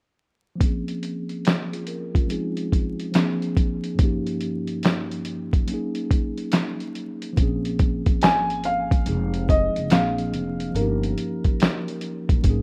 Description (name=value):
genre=lo-fi hip hop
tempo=71 BPM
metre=4/4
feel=swing 64% on 16ths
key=Bb minor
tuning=A4 = 439 Hz
part: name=mellow tine electric piano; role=accompaniment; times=0.6-12.6 s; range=G2 to Bb4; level=-30 LUFS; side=equal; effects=cassette tape, low-pass filter
part: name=lo-fi sampler-style drum kit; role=drums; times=0.6-12.6 s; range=handclaps, hi-hat, kick drum, snare drum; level=-23 LUFS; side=equal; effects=overdrive
part: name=upright bass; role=bass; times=7.4-12.6 s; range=F1 to Bb1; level=-31 LUFS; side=equal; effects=none
part: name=felt-muted upright piano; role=melody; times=8.2-12.6 s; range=Bb4 to Ab5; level=-28 LUFS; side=equal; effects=low-pass filter
room=digital ambience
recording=rough home demo mix, vinyl crackle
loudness=-23 LUFS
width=mono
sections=0.6-7.4 A section; 7.4-12.6 B section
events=filter sweep on tine electric piano 0.6-7.4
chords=0.6 Bbm7; 2.3 Fm7; 3.1 Bb7; 4.0 Eb7/G; 5.7 Ab7sus4; 7.4 Bbm7; 9.1 Fm7; 9.9 Bb7; 10.8 Eb7/G